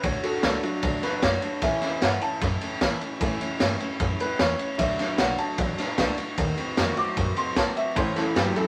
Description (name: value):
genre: rockabilly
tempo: 152 BPM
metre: 4/4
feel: straight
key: A mixolydian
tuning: A4 = 440 Hz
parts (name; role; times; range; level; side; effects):
- clear upright piano; accompaniment; 0.0-8.7 s; E3 to D6; -31 LUFS; equal; none
- picked steel-string acoustic guitar; accompaniment; 0.0-8.7 s; A2 to F#4; -34 LUFS; equal; none
- upright bass; bass; 0.0-8.6 s; A1 to A2; -35 LUFS; equal; none
- raw garage drum kit; drums; 0.0-8.6 s; kick drum, ride cymbal, snare drum; -28 LUFS; equal; none
- electric guitar through a small old amp; riff; 8.0-8.7 s; A2 to F#3; -30 LUFS; equal; none
room: moderate studio reverb, RT60 0.7 s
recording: vinyl crackle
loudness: -25 LUFS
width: mono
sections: 0.0-8.7 A section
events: upright piano solo 0.0-8.7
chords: 0.0 D; 1.6 A; 4.8 D; 6.4 D#dim7; 8.0 A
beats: | 0.04 0.43 0.83 1.23 | 1.62 2.02 2.42 2.81 | 3.21 3.60 4.00 4.40 | 4.79 5.19 5.58 5.98 | 6.38 6.77 7.17 7.56 | 7.96 8.36